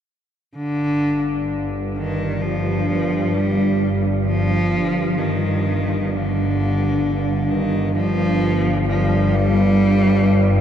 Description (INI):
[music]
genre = dark ambient drone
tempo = 65 BPM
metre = 4/4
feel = straight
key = unclear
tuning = A4 = 438 Hz
[part]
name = bubbling stepped-filter texture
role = texture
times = 0.5-10.6 s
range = F5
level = -37 LUFS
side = right 1 dB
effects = none
[part]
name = clear cello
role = melody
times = 0.6-10.6 s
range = D3 to G3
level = -20 LUFS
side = equal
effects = tape echo
[part]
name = bowed-like drone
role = drone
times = 1.1-10.6 s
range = G1 to G2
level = -19 LUFS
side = equal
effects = built-in reverb
[sound]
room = wet huge ambient reverb, RT60 8.3 s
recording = dark, warm production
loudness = -17 LUFS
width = side -9 dB against mid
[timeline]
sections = 0.6-10.6 A section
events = none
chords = 0.6 G5